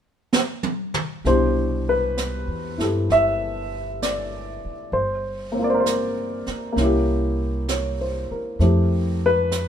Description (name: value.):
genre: jazz ballad.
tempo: 65 BPM.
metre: 4/4.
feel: swing 69% on 8ths.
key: C major.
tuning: A4 = 439 Hz.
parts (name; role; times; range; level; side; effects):
jazz brush drum kit; drums; 0.3-9.7 s; brushed snare drum, hi-hat, snare drum, toms; -25 LUFS; right 3 dB; none.
upright bass; bass; 1.2-9.7 s; G1 to G2; -24 LUFS; equal; none.
warm baby grand piano; accompaniment; 1.3-9.7 s; B2 to E5; -22 LUFS; left 1 dB; none.
room: light reverb.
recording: minimal, uncompressed stereo recording.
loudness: -20 LUFS.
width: side -9 dB against mid.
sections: 0.0-1.2 A section; 1.2-9.7 B section.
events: drum fill 0.3-1.2.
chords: 0.0 N.C.; 1.2 Cmaj9; 4.9 Gm7; 6.8 C7b9; 8.6 Fmaj9.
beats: 0.32 | 1.25 2.17 3.10 4.02 | 4.94 5.85 6.77 7.68 | 8.60 9.52.